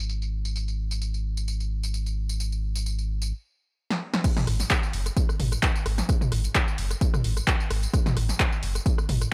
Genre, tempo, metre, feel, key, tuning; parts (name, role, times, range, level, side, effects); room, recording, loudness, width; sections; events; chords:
acid house; 130 BPM; 4/4; swing 54% on 16ths; A4 = 440 Hz
warm sub bass; bass; 0.0-9.2 s; F#1 to G#1; -30 LUFS; equal; tube saturation, sidechain pumping
punchy analog drum machine; drums; 0.1-9.3 s; crash cymbal, handclaps, hi-hat, rim click, snare drum, tambourine, toms; -30 LUFS; equal; overdrive, low-pass filter on snare, small room ambience, low-pass filter on toms, low-pass filter on hats, low-pass filter on cymbals, low-pass filter on perc
electronic kick drum; drums; 4.2-9.0 s; -26 LUFS; equal; overdrive, small room ambience
digital ambience; dry, gritty hardware recording; -26 LUFS; mono
0.0-4.2 A section; 4.2-9.3 B section
filter sweep on drum 0.0-4.2; drum fill 3.9-4.2; drop 4.2-9.3